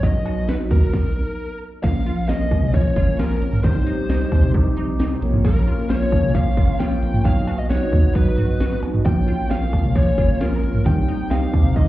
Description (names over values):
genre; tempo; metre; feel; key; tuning
synth-pop; 133 BPM; 4/4; straight; Bb dorian; A4 = 439 Hz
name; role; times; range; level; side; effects
smooth overdriven lead guitar; melody; 0.0-11.9 s; Bb4 to G5; -28 LUFS; left 2 dB; analog delay
mellow synth brass; accompaniment; 0.0-11.9 s; F3 to D#5; -27 LUFS; equal; chorus
sweeping resonant pad; sustained chords; 0.0-11.9 s; C3 to G4; -28 LUFS; equal; chorus, phaser
resonant blip pluck; arpeggios; 0.0-11.9 s; Eb3 to F#5; -31 LUFS; right 2 dB; chorus, analog delay
round analog bass; bass; 0.0-11.9 s; Ab1 to D#2; -22 LUFS; equal; none
house drum kit; drums; 0.0-11.9 s; cowbell, crash cymbal, hi-hat, kick drum, snare drum, toms; -20 LUFS; equal; overdrive
room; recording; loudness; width
light reverb; heard muffled through a wall, club reverb, EQ; -17 LUFS; side -15 dB against mid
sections
0.0-1.8 A section; 1.8-11.9 A section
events
stop 0.9-1.8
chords
0.0 B; 0.9 N.C.; 1.8 Bbm; 3.6 Cm; 5.2 Bbm; 7.2 B; 9.1 Bbm; 10.9 Cm